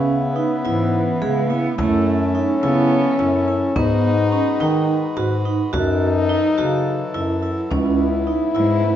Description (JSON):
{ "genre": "contemporary instrumental, chamber music in an uneven meter", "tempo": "212 BPM (eighths)", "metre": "7/8", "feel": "straight", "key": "F# dorian", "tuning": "A4 = 440 Hz", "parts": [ { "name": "clear French horn", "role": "second line", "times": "0.0-9.0 s", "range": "B3 to E4", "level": "-21 LUFS", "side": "left 4 dB", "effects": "none" }, { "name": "pedal harmonium", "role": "sustained chords", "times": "0.0-9.0 s", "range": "C#3 to B4", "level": "-28 LUFS", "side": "equal", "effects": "none" }, { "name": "vibraphone with hard mallets", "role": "arpeggios", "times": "0.0-8.9 s", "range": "B3 to G#4", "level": "-23 LUFS", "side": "right 4 dB", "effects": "none" }, { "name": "mellow bass clarinet", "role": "bass", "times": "0.0-9.0 s", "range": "C#2 to D#3", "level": "-22 LUFS", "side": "left 1 dB", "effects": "none" }, { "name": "dark cello", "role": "melody", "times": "0.6-3.4, 8.6-9.0 s", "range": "E3 to B3", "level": "-23 LUFS", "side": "right 6 dB", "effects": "none" }, { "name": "frame drum", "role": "percussion", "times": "0.7-8.8 s", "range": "none", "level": "-29 LUFS", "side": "left 1 dB", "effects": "none" } ], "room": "moderate recital hall reverb, RT60 1.6 s", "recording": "nothing above 7.6 kHz", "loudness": "-17 LUFS", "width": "side -10 dB against mid", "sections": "0.0-9.0 A section", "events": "none", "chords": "0.0 C#m7; 1.8 F#m7; 3.8 G#m7; 5.7 F#m7; 7.7 C#m7", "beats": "0.09 0.37 0.65 0.93 1.22 1.50 | 1.78 2.06 2.35 2.63 2.91 3.19 3.48 | 3.76 4.04 4.32 4.61 4.89 5.17 5.45 | 5.74 6.02 6.30 6.58 6.86 7.15 7.43 | 7.71 7.99 8.28 8.56 8.84" }